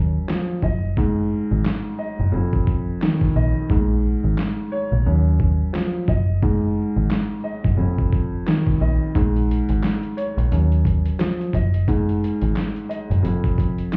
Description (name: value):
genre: hip hop, boom-bap hip-hop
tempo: 88 BPM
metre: 4/4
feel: swing 58% on 16ths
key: unclear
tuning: A4 = 444 Hz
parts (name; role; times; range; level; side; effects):
- dark upright piano; accompaniment; 0.0-14.0 s; F2 to Eb5; -26 LUFS; equal; cassette tape, high-pass filter, low-pass filter
- deep dub picked electric bass; bass; 0.0-13.8 s; F1 to Eb2; -22 LUFS; equal; none
- boom bap sampler-style drum kit; drums; 0.3-14.0 s; handclaps, hi-hat, kick drum, snare drum; -25 LUFS; equal; overdrive
room: little or no reverb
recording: heard muffled through a wall, club reverb, vinyl crackle, EQ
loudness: -21 LUFS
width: mono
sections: 0.0-14.0 A section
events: break 0.0-9.2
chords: 0.0 Ebmadd9; 0.6 Gbsus2; 2.3 F7(no3); 3.7 Bbm7; 5.1 Ebmadd9; 6.1 Gbsus2; 7.8 F7(no3); 9.2 Bbm7; 10.5 Ebmadd9; 11.5 Gbsus2; 13.2 N.C.